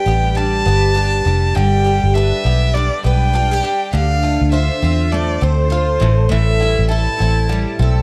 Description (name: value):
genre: acoustic pop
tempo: 101 BPM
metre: 4/4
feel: swing 60% on 16ths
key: unclear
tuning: A4 = 441 Hz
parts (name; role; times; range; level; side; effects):
- warm violin; melody; 0.0-7.8 s; C5 to A5; -22 LUFS; equal; tape echo
- picked twelve-string acoustic guitar; accompaniment; 0.0-8.0 s; A2 to C5; -22 LUFS; equal; double-tracked
- bluegrass banjo; arpeggios; 0.0-8.0 s; D3 to F4; -31 LUFS; equal; none
- vintage muted fingered electric bass; bass; 0.1-8.0 s; F1 to E2; -18 LUFS; equal; none
room: moderate studio ambience, RT60 0.5 s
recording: dark, warm production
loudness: -16 LUFS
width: mono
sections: 0.0-8.0 A section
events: none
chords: 0.0 G; 3.9 Dm7; 6.0 Am7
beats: 0.37 0.96 | 1.56 2.15 2.75 3.34 | 3.94 4.53 5.13 5.72 | 6.32 6.91 7.50